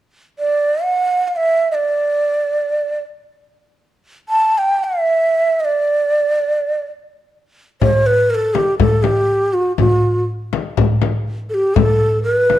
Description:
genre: Arabic maqam ensemble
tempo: free time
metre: none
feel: none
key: D maqam rast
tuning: A4 = 440 Hz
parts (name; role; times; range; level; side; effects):
- breathy mellow ney; melody; 0.4-12.6 s; F#4-50c to A5; -15 LUFS; right 1 dB; none
- darbuka; percussion; 7.8-12.6 s; none; -19 LUFS; equal; none
- frame drum; percussion; 7.8-12.6 s; none; -19 LUFS; left 8 dB; none
room: moderate recital hall reverb, RT60 1.2 s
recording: dark, warm production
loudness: -14 LUFS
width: side -13 dB against mid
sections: 0.0-7.8 A section; 7.8-12.6 B section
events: none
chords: none

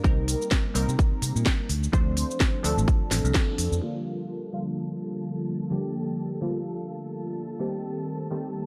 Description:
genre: filtered disco house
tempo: 127 BPM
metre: 4/4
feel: swing 56% on 16ths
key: G minor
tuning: A4 = 438 Hz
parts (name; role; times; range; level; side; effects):
- funky polysynth comp; accompaniment; 0.0-8.7 s; D3 to C5; -32 LUFS; equal; chorus, phaser, sidechain pumping, low-pass filter
- fingered electric bass; bass; 0.0-3.8 s; A1 to C3; -29 LUFS; equal; sidechain pumping, low-pass filter
- electronic kick drum; drums; 0.0-3.5 s; none; -26 LUFS; equal; small room reverb
- tube shaker; percussion; 0.0-3.8 s; none; barely audible; none; none
- house drum kit; drums; 0.1-3.8 s; hi-hat, shaker, snare drum; -32 LUFS; equal; sidechain pumping on hats, low-pass filter on hats, small room reverb, sidechain pumping on perc, low-pass filter on perc, low-pass filter on snare
- string machine, full ensemble; sustained chords; 3.8-8.7 s; A4 to A5; -44 LUFS; equal; ensemble chorus, sidechain pumping, low-pass filter
room: little or no reverb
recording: none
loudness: -27 LUFS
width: mono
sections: 0.0-3.8 A section; 3.8-8.7 B section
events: filter sweep 0.0-3.8, 3.8-8.7; band accent 3.4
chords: 0.0 Cm7; 1.7 Dm7; 3.8 Gm7; 7.6 Cm7

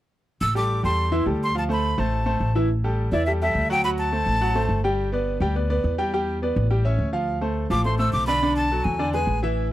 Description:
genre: latin, salsa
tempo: 210 BPM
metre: 4/4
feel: straight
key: A minor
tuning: A4 = 440 Hz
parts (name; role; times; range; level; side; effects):
- breathy bright jazz flute; melody; 0.4-4.8, 7.7-9.4 s; D5 to E6; -24 LUFS; equal; none
- upright bass; bass; 0.4-9.7 s; G1 to E2; -24 LUFS; equal; none
- bright baby grand piano; accompaniment; 0.6-9.7 s; D3 to G5; -25 LUFS; equal; none
room: little or no reverb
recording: dry, close 1970s-style studio recording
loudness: -20 LUFS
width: side -14 dB against mid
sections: 0.4-2.7 A section; 2.7-9.7 B section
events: none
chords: 0.4 Am7; 1.6 Dm7; 2.7 A5; 3.8 D7; 5.0 G6; 6.1 Em7; 6.7 A7; 7.3 Dm7; 8.4 Bm7; 9.0 E7

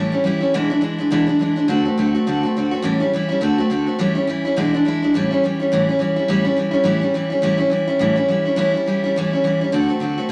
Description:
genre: rock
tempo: 209 BPM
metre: 4/4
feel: swing 58% on 8ths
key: A mixolydian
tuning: A4 = 439 Hz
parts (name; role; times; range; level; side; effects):
- picked steel-string acoustic guitar; solo; 0.0-10.3 s; E2 to F#4; -19 LUFS; equal; none
room: wet studio reverb, RT60 0.6 s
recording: none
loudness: -19 LUFS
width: mono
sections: 0.0-5.1 A section; 5.1-10.3 B section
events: none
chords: 0.0 A7; 0.5 E7; 1.7 D7; 2.8 A7; 3.4 D7; 4.0 A7; 4.6 E7; 5.1 A7; 9.7 D7

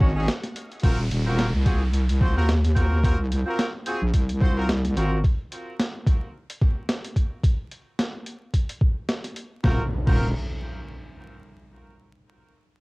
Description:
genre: glitch hop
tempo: 109 BPM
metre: 4/4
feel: swing 56% on 16ths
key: Eb dorian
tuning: A4 = 439 Hz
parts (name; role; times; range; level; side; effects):
- bright horn section; stabs; 0.0-5.2, 9.6-10.3 s; C4 to Db5; -30 LUFS; equal; sidechain pumping, tape echo
- wobble bass; bass; 0.0-5.2, 9.6-10.3 s; Eb1 to Eb2; -22 LUFS; equal; chorus
- electronic kick drum; drums; 0.0-10.2 s; none; -20 LUFS; equal; cassette tape
- boom bap sampler-style drum kit; drums; 0.3-10.2 s; crash cymbal, hi-hat, snare drum; -30 LUFS; equal; cassette tape
- downlifter and impact; sound effects; 0.8-5.2, 9.7-11.8 s; none; -34 LUFS; equal; none
room: little or no reverb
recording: home recording on cassette, vinyl crackle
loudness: -21 LUFS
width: side -27 dB against mid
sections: 0.8-9.6 A section; 9.6-11.8 B section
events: break 0.3-0.8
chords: 0.0 Ab7sus4; 0.8 Ebm69; 5.2 N.C.; 9.6 Ebm69

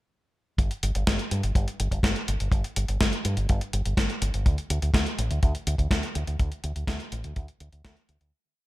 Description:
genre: italo disco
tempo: 124 BPM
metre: 4/4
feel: straight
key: unclear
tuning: A4 = 440 Hz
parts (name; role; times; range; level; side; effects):
- fingered electric bass with an envelope filter; bass; 0.6-8.3 s; G1 to G2; -28 LUFS; equal; none
- gated 80s digital drum machine; drums; 0.6-8.3 s; hi-hat, snare drum; -30 LUFS; left 1 dB; gated reverb, gated reverb snare
- kick drum; drums; 0.6-7.9 s; none; -24 LUFS; equal; none
room: little or no reverb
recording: none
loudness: -24 LUFS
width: side -17 dB against mid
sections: 0.6-8.3 verse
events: fade-out 5.7-8.3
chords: none

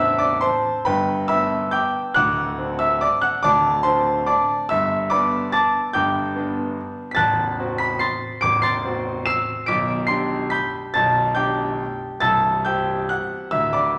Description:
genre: classical, piano waltz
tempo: 131-152 BPM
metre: 3/4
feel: rubato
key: G major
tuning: A4 = 436 Hz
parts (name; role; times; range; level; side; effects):
- bright concert grand piano; solo; 0.0-14.0 s; A0 to E7; -21 LUFS; equal; none
room: wet recital hall reverb, RT60 1.4 s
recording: none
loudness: -21 LUFS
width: mono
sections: 0.0-14.0 A section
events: none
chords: 0.0 D7/A; 0.9 G; 2.2 D7; 4.7 G; 7.2 D7/A; 9.7 G/B; 12.2 C

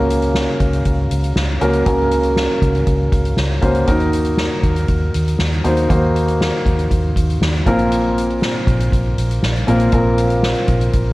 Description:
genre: piano-driven pop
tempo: 119 BPM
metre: 4/4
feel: straight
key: unclear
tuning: A4 = 440 Hz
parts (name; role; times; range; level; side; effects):
- warm concert grand piano; accompaniment; 0.0-11.1 s; Bb2 to C5; -18 LUFS; equal; none
- vintage muted fingered electric bass; bass; 0.0-11.1 s; Bb1 to Eb2; -19 LUFS; equal; none
- soft-mallet drum kit; drums; 0.1-11.1 s; hi-hat, kick drum, snare drum; -20 LUFS; equal; none
room: light reverb, small room ambience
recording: worn, warbling old tape, cassette tape, warbly pitch drift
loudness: -14 LUFS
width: side -19 dB against mid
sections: 0.0-11.1 A section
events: none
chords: 0.0 Gb/Db; 3.9 Ebm; 7.7 Bbsus2

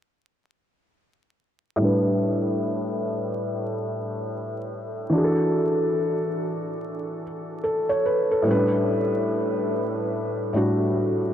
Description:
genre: hip hop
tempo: 72 BPM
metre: 4/4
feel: swing 63% on 16ths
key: unclear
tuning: A4 = 440 Hz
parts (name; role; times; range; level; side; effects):
- felt-muted upright piano; accompaniment; 1.8-11.3 s; A2 to C#5; -22 LUFS; equal; low-pass filter
room: wet huge ambient reverb, RT60 9.7 s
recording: dreamy mix soaked in reverb, vinyl crackle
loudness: -22 LUFS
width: side -10 dB against mid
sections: 1.8-8.5 A section; 8.5-11.3 B section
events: filter sweep on felt piano 1.8-8.5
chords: 1.8 A9sus4; 5.1 E9sus4; 8.5 A9sus4

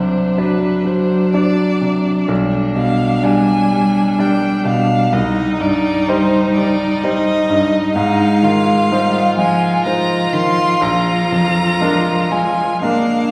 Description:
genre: classical, slow romantic movement for piano quartet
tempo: 63 BPM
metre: 3/4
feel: rubato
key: C minor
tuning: A4 = 440 Hz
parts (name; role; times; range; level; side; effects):
- rich violin; melody; 0.0-13.3 s; B4 to C6; -22 LUFS; equal; none
- rich cello; second line; 0.0-13.3 s; F3 to Bb3; -21 LUFS; equal; none
- rich violin; second line; 0.0-13.3 s; D4 to F4; -22 LUFS; equal; none
- bright baby grand piano; accompaniment; 0.0-13.3 s; Bb1 to D5; -20 LUFS; equal; none
room: wet recital hall reverb, RT60 1.4 s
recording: heard from further back in the room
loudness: -15 LUFS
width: mono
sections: 0.0-13.3 A section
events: none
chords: 0.0 D7/C; 2.3 G/B; 5.1 Cm; 8.0 Fm7/Ab; 10.8 Bb7

